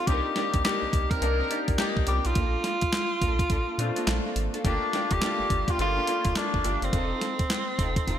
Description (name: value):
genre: R&B, new jack swing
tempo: 105 BPM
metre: 4/4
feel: swing 62% on 16ths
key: C dorian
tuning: A4 = 439 Hz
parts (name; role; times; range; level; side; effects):
- warm tenor saxophone; melody; 0.0-8.2 s; C4 to Bb4; -28 LUFS; equal; none
- clear baby grand piano; accompaniment; 0.0-7.0 s; A3 to Bb4; -32 LUFS; left 4 dB; analog chorus
- warm studio string section; stabs; 0.1-8.2 s; Bb3 to Bb4; -36 LUFS; right 2 dB; none
- round analog bass; bass; 0.1-8.2 s; F1 to Bb2; -29 LUFS; equal; none
- crisp 8-bit digital drum machine; drums; 0.1-8.2 s; handclaps, hi-hat, kick drum, snare drum; -28 LUFS; equal; gated reverb
room: light reverb, small room ambience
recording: bright 1980s-style digital production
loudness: -24 LUFS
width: side -10 dB against mid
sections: 0.0-8.2 A section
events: none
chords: 0.1 Cm7; 2.4 Bbmaj7; 4.6 Gm7; 6.9 F7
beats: | 0.07 0.64 1.22 1.79 | 2.36 2.93 3.50 4.07 | 4.64 5.22 5.79 6.36 | 6.93 7.50 8.07